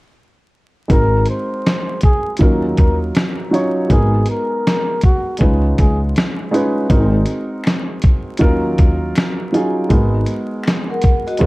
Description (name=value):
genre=lo-fi hip hop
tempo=80 BPM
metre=4/4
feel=swing 64% on 16ths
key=unclear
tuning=A4 = 441 Hz
part: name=trumpet with bucket mute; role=melody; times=0.9-6.0 s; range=Gb4 to C5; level=-22 LUFS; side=equal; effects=low-pass filter
part: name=dark upright piano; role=accompaniment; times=0.9-11.5 s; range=Gb3 to Db5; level=-19 LUFS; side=right 1 dB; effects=low-pass filter
part: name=upright bass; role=bass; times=0.9-11.5 s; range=Ab1 to Eb2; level=-17 LUFS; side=equal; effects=none
part: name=dusty soul sampler-style drum kit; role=drums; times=0.9-11.5 s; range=hi-hat, kick drum, snare drum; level=-15 LUFS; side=equal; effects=none
part: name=finger snap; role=percussion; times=7.6-10.9 s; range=none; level=-32 LUFS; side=left 2 dB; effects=none
part: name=vibraphone with soft mallets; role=second line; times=10.9-11.5 s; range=Gb4 to Gb5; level=-19 LUFS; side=left 1 dB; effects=low-pass filter
room=little or no reverb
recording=vinyl crackle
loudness=-14 LUFS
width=side -21 dB against mid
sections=0.9-11.5 A section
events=none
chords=0.9 Ab9; 2.4 Ebm7; 3.9 Abm9; 5.4 Db7; 6.9 Ab9; 8.4 Ebm7; 9.9 Abm9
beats=| 0.90 1.65 2.40 3.15 | 3.90 4.65 5.40 6.15 | 6.90 7.65 8.40 9.15 | 9.90 10.65 11.40